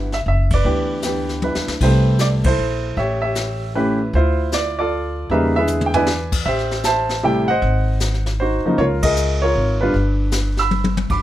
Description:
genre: jazz piano trio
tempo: 155 BPM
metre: 3/4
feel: swing 65% on 8ths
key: C major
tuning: A4 = 441 Hz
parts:
  - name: warm baby grand piano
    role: melody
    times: 0.0-11.2 s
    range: C3 to E6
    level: -19 LUFS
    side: right 1 dB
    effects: none
  - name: upright bass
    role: bass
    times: 0.0-11.2 s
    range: F#1 to E2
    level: -20 LUFS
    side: equal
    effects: none
  - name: jazz brush drum kit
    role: drums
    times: 0.1-11.2 s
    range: brushed snare drum, crash cymbal, hi-hat, kick drum, ride cymbal, snare drum, toms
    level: -24 LUFS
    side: left 2 dB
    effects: none
room: light reverb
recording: none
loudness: -16 LUFS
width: side -13 dB against mid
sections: 0.0-1.8 A section; 1.8-11.1 B section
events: band accent 0.4, 2.4, 9.0; drum fill 1.4-1.8, 5.7-6.1, 10.7-11.1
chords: 0.0 G6; 1.8 C6; 3.0 A7; 4.1 Dm9; 5.3 E7; 6.5 Am7; 7.6 Ab7; 8.8 Db69; 9.9 G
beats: 0.26 | 0.64 1.03 1.42 | 1.81 2.20 2.59 | 2.97 3.36 3.75 | 4.14 4.53 4.91 | 5.30 5.69 6.08 | 6.46 6.85 7.24 | 7.62 8.01 8.40 | 8.78 9.17 9.55 | 9.94 10.33 10.71 | 11.10

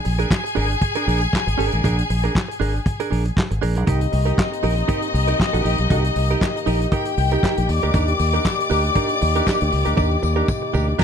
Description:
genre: disco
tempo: 118 BPM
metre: 4/4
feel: swing 56% on 16ths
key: C minor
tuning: A4 = 441 Hz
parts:
  - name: rich studio string section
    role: second line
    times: 0.0-11.0 s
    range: Eb4 to D6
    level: -24 LUFS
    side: left 5 dB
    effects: none
  - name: direct-recorded clean electric guitar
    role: accompaniment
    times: 0.0-11.0 s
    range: D4 to Bb4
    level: -26 LUFS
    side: right 7 dB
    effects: none
  - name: warm soul drum kit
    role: drums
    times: 0.0-11.0 s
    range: crash cymbal, handclaps, hi-hat, kick drum, snare drum, toms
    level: -23 LUFS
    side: equal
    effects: none
  - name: fingered electric bass with an envelope filter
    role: bass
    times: 0.1-11.0 s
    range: Ab1 to Eb2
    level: -20 LUFS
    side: equal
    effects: none
  - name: warm French horn section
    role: sustained chords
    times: 3.9-11.0 s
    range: Eb3 to G4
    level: -27 LUFS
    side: left 2 dB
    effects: none
  - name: tambourine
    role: percussion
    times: 7.9-10.9 s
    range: none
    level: -40 LUFS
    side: left 7 dB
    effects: none
room: light reverb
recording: dark, warm production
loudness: -17 LUFS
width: side -8 dB against mid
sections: 0.0-3.9 A section; 3.9-11.0 B section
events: drum fill 10.0-11.0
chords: 0.0 Bb7; 3.9 Cm7; 7.7 Ebmaj7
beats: 0.31 0.82 1.33 | 1.83 2.35 2.85 3.36 | 3.87 4.38 4.89 5.40 | 5.91 6.42 6.93 7.44 | 7.94 8.45 8.96 9.47 | 9.98 10.48 10.99

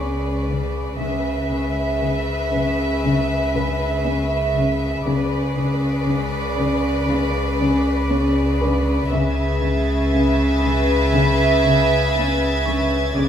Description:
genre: cinematic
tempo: 59 BPM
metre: 4/4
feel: straight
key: C# phrygian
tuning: A4 = 439 Hz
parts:
  - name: warm symphonic violin section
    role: second line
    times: 0.0-13.3 s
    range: B4 to E5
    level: -22 LUFS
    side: right 1 dB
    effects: none
  - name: dark studio cello section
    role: riff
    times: 0.0-13.3 s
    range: C#3 to C#4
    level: -24 LUFS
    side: left 2 dB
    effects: none
  - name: rich symphonic cello section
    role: bass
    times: 0.0-13.3 s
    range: C#3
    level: -24 LUFS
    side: left 2 dB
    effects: none
  - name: warm chamber double bass section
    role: bass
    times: 0.0-13.3 s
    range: C#2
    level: -23 LUFS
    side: equal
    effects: none
  - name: warm concert grand piano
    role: texture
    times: 0.0-13.3 s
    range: B4 to C#6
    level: -32 LUFS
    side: left 2 dB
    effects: none
  - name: warm symphonic violin section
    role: texture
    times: 0.0-0.4, 9.1-13.3 s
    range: C#6 to A6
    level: -30 LUFS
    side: right 1 dB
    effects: none
room: wet stone room reverb, RT60 1.3 s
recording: heard from further back in the room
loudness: -17 LUFS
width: side -9 dB against mid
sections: 0.0-13.3 A section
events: none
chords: 0.0 Bm/C#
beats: | 0.99 2.01 3.03 4.04 | 5.06 6.07 7.09 8.11 | 9.12 10.13 11.14 12.15 | 13.17

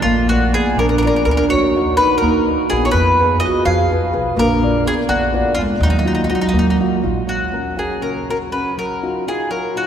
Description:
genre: italian folk, Italian serenade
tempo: 82 BPM (dotted quarters)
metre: 6/8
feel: rubato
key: Eb minor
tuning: A4 = 439 Hz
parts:
  - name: mandolin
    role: melody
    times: 0.0-9.9 s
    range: Eb4 to F5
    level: -19 LUFS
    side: left 1 dB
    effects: none
  - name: marimba with medium hard mallets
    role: second line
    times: 0.0-6.7 s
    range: Gb3 to Ab4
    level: -20 LUFS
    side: right 4 dB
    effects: none
  - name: upright bass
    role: bass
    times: 0.0-7.2 s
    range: Bb1 to F2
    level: -21 LUFS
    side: equal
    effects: none
  - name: flamenco guitar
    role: accompaniment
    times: 0.1-9.9 s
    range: C#3 to D5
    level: -21 LUFS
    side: left 2 dB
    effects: none
room: wet cathedral reverb, RT60 4.6 s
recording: recorded in a church or concert hall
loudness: -14 LUFS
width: side -8 dB against mid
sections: 0.0-7.3 A section; 7.3-9.9 B section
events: none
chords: 0.0 Bb; 1.5 Ebm; 2.9 Fdim; 4.4 Bb; 5.8 Ebmadd9; 7.3 F#; 8.8 D#madd9/F#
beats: | 0.04 0.76 | 1.49 2.22 | 2.94 3.66 | 4.37 5.09 | 5.81 6.53 | 7.27 8.02 | 8.76 9.50

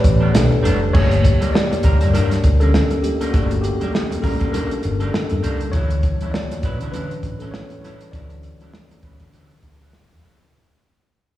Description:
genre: lush 1970s-style soul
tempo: 100 BPM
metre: 4/4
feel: swing 58% on 16ths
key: D major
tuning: A4 = 440 Hz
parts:
  - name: tine electric piano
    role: accompaniment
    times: 0.0-10.6 s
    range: C#3 to D5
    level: -23 LUFS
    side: left 2 dB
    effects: medium stereo tremolo, slapback echo
  - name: electric guitar through a small old amp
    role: riff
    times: 0.0-10.4 s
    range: F#3 to B4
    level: -30 LUFS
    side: right 3 dB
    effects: slapback echo
  - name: vintage muted fingered electric bass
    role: bass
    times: 0.0-10.5 s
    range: F#1 to D3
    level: -19 LUFS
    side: equal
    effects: none
  - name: warm soul drum kit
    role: drums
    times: 0.0-10.5 s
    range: crash cymbal, hi-hat, kick drum, snare drum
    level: -20 LUFS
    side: equal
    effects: none
  - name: congas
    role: percussion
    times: 0.5-10.4 s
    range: none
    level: -30 LUFS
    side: right 6 dB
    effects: slapback echo
room: light reverb, small room ambience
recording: live gig heard through the venue's PA, recital hall reverb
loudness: -16 LUFS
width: side -14 dB against mid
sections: 0.9-10.5 A section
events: fade-out 0.9-10.5; tine electric piano solo 0.9-10.5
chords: 0.0 A9sus4; 0.9 Gmadd9; 5.7 Dmaj9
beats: 0.35 | 0.94 1.54 2.14 2.74 | 3.34 3.94 4.54 5.14 | 5.74 6.33 6.93 7.53 | 8.13 8.73 9.33 9.93

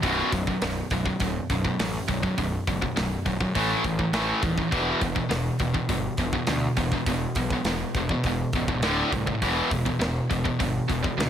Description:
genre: heavy metal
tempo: 102 BPM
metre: 4/4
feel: straight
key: unclear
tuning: A4 = 440 Hz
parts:
  - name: high-gain distorted guitar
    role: riff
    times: 0.0-11.3 s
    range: B1 to A3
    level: -25 LUFS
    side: equal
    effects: distortion
  - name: fuzz picked electric bass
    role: bass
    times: 0.0-11.3 s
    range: B0 to D2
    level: -30 LUFS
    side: equal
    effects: overdrive
  - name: tight metal drum kit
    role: drums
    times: 0.0-11.3 s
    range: hi-hat, kick drum, snare drum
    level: -30 LUFS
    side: equal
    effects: none
room: studio reverb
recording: none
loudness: -23 LUFS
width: side -9 dB against mid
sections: 0.0-11.3 A section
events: none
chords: 0.0 B5; 3.5 A5; 4.7 E5; 8.8 D5; 9.4 E5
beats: | 0.03 0.62 1.20 1.79 | 2.37 2.96 3.55 4.13 | 4.72 5.31 5.89 6.48 | 7.07 7.66 8.24 8.83 | 9.42 10.01 10.60 11.19

